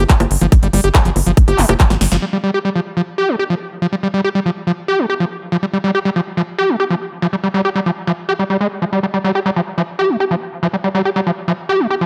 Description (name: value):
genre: psychedelic trance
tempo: 141 BPM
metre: 4/4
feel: straight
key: unclear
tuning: A4 = 440 Hz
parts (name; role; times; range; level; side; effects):
- screaming distorted acid line; riff; 0.0-12.1 s; F3 to G4; -18 LUFS; equal; distortion, chorus, sidechain pumping, dub echo
- tight sequencer bass; bass; 0.0-2.2 s; F1 to Ab1; -18 LUFS; equal; none
- big-room dance drum kit; drums; 0.1-2.2 s; bongos, handclaps, hi-hat, snare drum; -21 LUFS; equal; overdrive
- electronic kick drum; drums; 0.1-1.9 s; none; -12 LUFS; equal; none
room: light reverb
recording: none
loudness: -17 LUFS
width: mono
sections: 0.0-2.2 A section; 2.2-12.1 B section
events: drop 0.0-2.2; drum fill 1.9-2.2; band accent 2.1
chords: 0.0 Fsus2